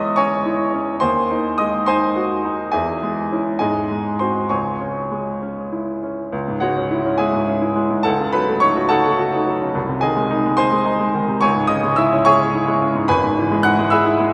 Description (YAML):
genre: classical, virtuoso piano study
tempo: 65-73 BPM (dotted quarters)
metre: 6/8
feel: rubato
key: C# minor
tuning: A4 = 441 Hz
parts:
  - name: clear baby grand piano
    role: solo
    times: 0.0-14.3 s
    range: G#1 to F#6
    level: -19 LUFS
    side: equal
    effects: none
room: wet church reverb, RT60 3.0 s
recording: none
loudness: -19 LUFS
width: mono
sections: 0.0-6.3 A section; 6.3-14.3 A section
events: none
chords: 0.0 C#m/E; 1.0 G#7/D#; 2.7 C#m/E; 3.6 G#7; 4.5 C#m; 8.1 D#m7b5/C#; 9.8 G#/B#; 11.4 C#m; 13.1 E/G#